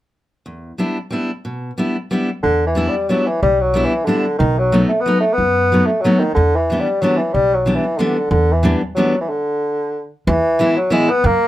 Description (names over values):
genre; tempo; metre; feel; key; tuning
musette waltz; 184 BPM; 3/4; straight; E minor; A4 = 440 Hz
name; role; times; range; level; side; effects
fingerpicked steel-string acoustic guitar; accompaniment; 0.5-11.1 s; E2 to E4; -18 LUFS; equal; none
warm bassoon; melody; 2.4-11.5 s; D3 to B3; -16 LUFS; equal; none
upright bass; bass; 2.4-11.4 s; B1 to F#2; -18 LUFS; right 1 dB; none
room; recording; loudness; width
light reverb; none; -14 LUFS; side -14 dB against mid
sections
0.5-2.4 A section; 2.4-10.3 B section; 10.3-11.5 C section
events
stop 9.3-10.3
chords
0.5 Em7; 4.4 B7; 6.4 Em7; 10.3 E